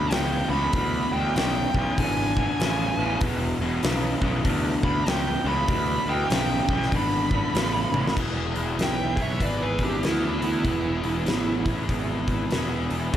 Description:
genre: blues rock power trio and southern rock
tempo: 97 BPM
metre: 4/4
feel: swing 62% on 8ths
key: E mixolydian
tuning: A4 = 440 Hz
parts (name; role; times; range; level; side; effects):
- bluesy overdriven lead guitar; melody; 0.0-11.7 s; D4 to B5; -28 LUFS; right 2 dB; distortion
- overdriven tonewheel organ; sustained chords; 0.0-13.2 s; A3 to D5; -37 LUFS; right 3 dB; chorus vibrato, slow rotary speaker
- distorted electric guitar; riff; 0.0-13.2 s; E2 to G#4; -28 LUFS; left 1 dB; overdrive
- fuzz picked electric bass; bass; 0.0-13.2 s; E1 to D2; -28 LUFS; equal; overdrive
- huge arena drum kit; drums; 0.1-13.2 s; crash cymbal, hi-hat, kick drum, snare drum, toms; -28 LUFS; equal; none
- nasal lead guitar with a parked wah; second line; 8.8-11.6 s; B3 to E5; -35 LUFS; right 4 dB; overdrive, slapback echo
room: light reverb, small room ambience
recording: none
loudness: -22 LUFS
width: side -11 dB against mid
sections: 0.0-8.2 A section; 8.2-13.2 B section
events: lead electric guitar solo 0.0-8.2; drum fill 7.9-8.2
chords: 0.0 E

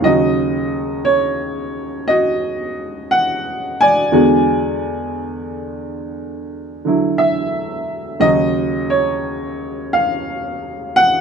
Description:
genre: solo jazz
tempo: 59 BPM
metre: 4/4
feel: swing 68% on 8ths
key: Eb minor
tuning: A4 = 441 Hz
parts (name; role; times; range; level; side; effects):
- warm upright piano; solo; 0.0-11.2 s; Eb2 to Ab5; -16 LUFS; right 1 dB; none
room: moderate studio reverb, RT60 0.7 s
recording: none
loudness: -15 LUFS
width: side -6 dB against mid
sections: 0.0-11.2 A section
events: none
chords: 0.0 Ebm7; 4.1 E9; 8.2 Ebm9

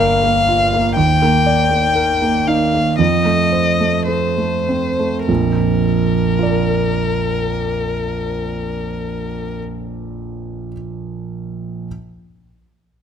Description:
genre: classical, romantic duo for violin and grand piano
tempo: 48-62 BPM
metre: 4/4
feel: rubato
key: Bb major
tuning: A4 = 438 Hz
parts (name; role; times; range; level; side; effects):
- rich violin; melody; 0.0-9.6 s; Bb4 to G5; -18 LUFS; left 4 dB; none
- warm concert grand piano; accompaniment; 0.0-11.9 s; G1 to D5; -17 LUFS; right 3 dB; none
room: moderate recital hall reverb, RT60 1.4 s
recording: close, detailed microphones, faint mains hum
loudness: -14 LUFS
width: side -8 dB against mid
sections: 0.0-5.3 A section; 5.3-9.7 B section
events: slowing down 0.0-5.3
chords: 0.0 Gm7; 1.0 Ebmaj7; 3.0 F7; 5.3 Bb

